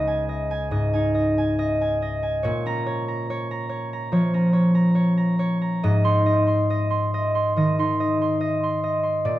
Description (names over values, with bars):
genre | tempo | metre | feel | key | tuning
classical, solo harp piece | 70 BPM | 4/4 | rubato | Ab major | A4 = 441 Hz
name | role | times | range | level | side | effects
concert harp | solo | 0.0-9.4 s | Db2 to C6 | -20 LUFS | equal | none
room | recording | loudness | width
light reverb | dark, warm production | -20 LUFS | side -14 dB against mid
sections
0.0-9.4 A section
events
none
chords
0.0 Dbsus2; 2.4 Bbm7; 5.8 Ab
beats
0.71 1.57 | 2.44 3.29 4.12 4.96 | 5.83 6.67 7.53 8.38 | 9.23